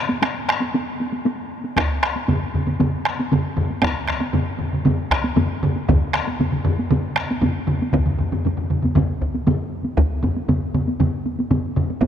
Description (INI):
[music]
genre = japanese traditional, taiko drum ensemble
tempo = 117 BPM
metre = 4/4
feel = straight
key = none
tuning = none
[part]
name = taiko ensemble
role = percussion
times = 0.1-12.1 s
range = none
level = -24 LUFS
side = equal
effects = none
[part]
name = taiko ensemble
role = percussion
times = 0.2-11.9 s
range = none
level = -24 LUFS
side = left 3 dB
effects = none
[part]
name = taiko ensemble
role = percussion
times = 0.2-11.9 s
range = none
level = -24 LUFS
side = right 3 dB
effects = none
[part]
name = taiko ensemble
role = percussion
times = 1.8-12.1 s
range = none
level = -25 LUFS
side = equal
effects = none
[sound]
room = wet cathedral reverb, RT60 5.5 s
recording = in a vast, echoing space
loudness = -19 LUFS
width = side -9 dB against mid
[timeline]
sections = 0.0-10.0 A section; 10.0-12.1 B section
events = none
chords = none